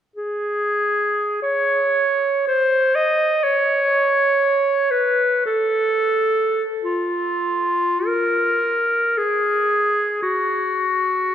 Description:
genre	classical, free, expressive piece for unaccompanied clarinet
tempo	54 BPM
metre	3/4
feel	uneven beats, rubato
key	Db mixolydian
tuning	A4 = 440 Hz
part	bright clarinet	solo	0.2-11.3 s	F4 to Eb5	-17 LUFS	equal	none
room	wet church reverb, RT60 3.7 s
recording	none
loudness	-17 LUFS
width	side -9 dB against mid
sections	0.2-6.8 A section; 6.8-11.3 B section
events	none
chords	none

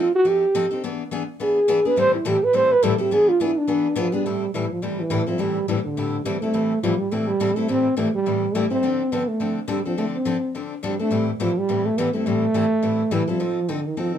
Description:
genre	jazz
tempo	210 BPM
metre	4/4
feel	swing 57% on 8ths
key	A minor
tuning	A4 = 439 Hz
part	mellow French horn	melody	0.0-14.2 s	D3 to C5	-20 LUFS	right 2 dB	none
part	picked steel-string acoustic guitar	accompaniment	0.0-14.2 s	A2 to A4	-25 LUFS	left 5 dB	none
room	moderate club reverb, RT60 0.6 s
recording	minimal, uncompressed stereo recording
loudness	-19 LUFS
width	side -9 dB against mid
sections	0.0-4.3 A section; 4.3-14.2 B section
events	French horn solo 0.0-4.3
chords	0.0 F7; 0.8 E7; 2.0 Am7; 3.1 E7; 4.3 Am7; 8.8 Dm7; 11.1 Am7; 13.4 F7

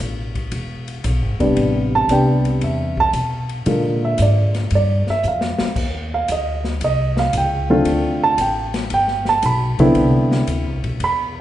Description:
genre	jazz, small-group swing and bop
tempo	114 BPM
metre	4/4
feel	swing 69% on 8ths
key	C major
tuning	A4 = 440 Hz
part	upright bass	bass	0.0-11.4 s	E1 to B2	-21 LUFS	equal	none
part	open jazz drum kit	drums	0.4-11.2 s	crash cymbal, hi-hat, kick drum, ride cymbal, snare drum	-28 LUFS	left 2 dB	none
part	dark baby grand piano	accompaniment	1.4-11.4 s	C3 to B5	-18 LUFS	right 1 dB	none
room	wet recital hall reverb, RT60 1.7 s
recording	recorded in a church or concert hall, nothing above 10.5 kHz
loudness	-16 LUFS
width	side -13 dB against mid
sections	0.0-11.4 A section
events	drum fill 5.2-5.8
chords	0.0 N.C.; 0.5 E7; 1.6 Am11; 3.7 Bb7; 5.8 Ebmaj9; 7.9 Dm7; 8.9 G6; 10.0 Cmaj9

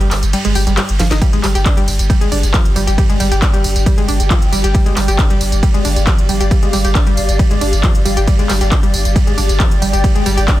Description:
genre	driving peak-time techno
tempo	136 BPM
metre	4/4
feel	straight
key	unclear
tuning	A4 = 438 Hz
part	analog pluck	riff	0.0-10.6 s	F3 to G4	-20 LUFS	equal	chorus, tube saturation, sidechain pumping, digital delay
part	saturated sub bass	bass	0.0-10.5 s	G1	-17 LUFS	equal	overdrive, sidechain pumping, low-pass filter
part	techno drum kit	drums	0.0-10.6 s	handclaps, hi-hat, ride cymbal, snare drum, tambourine	-20 LUFS	right 1 dB	overdrive, sidechain pumping on hats, sidechain pumping on perc, sidechain pumping on cymbals
part	electronic kick drum	drums	1.2-10.6 s	none	-14 LUFS	equal	overdrive
part	granular cloud pad	texture	2.0-10.6 s	G4 to G5	-23 LUFS	left 1 dB	built-in reverb, sidechain pumping
room	digital ambience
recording	dense, heavily limited modern master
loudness	-11 LUFS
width	side -15 dB against mid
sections	0.0-10.6 A section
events	kick drops out 0.3-1.2; drum fill 1.0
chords	0.0 G5

